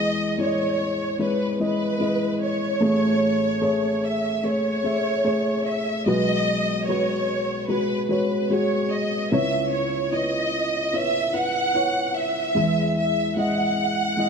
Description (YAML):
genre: pop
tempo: 74 BPM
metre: 4/4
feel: straight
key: C# minor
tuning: A4 = 440 Hz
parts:
  - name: warm studio violin section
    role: melody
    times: 0.0-14.3 s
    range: B4 to F#5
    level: -24 LUFS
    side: right 1 dB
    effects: none
  - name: felt-muted upright piano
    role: accompaniment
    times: 0.0-14.3 s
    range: A1 to E5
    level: -23 LUFS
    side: left 1 dB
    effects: none
room: moderate plate reverb, RT60 2.6 s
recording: none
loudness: -20 LUFS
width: side -6 dB against mid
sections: 0.0-14.3 A section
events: none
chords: 0.0 Emaj7; 2.8 Amaj7; 6.1 G#m7/B; 9.3 C#m7; 12.5 Emaj7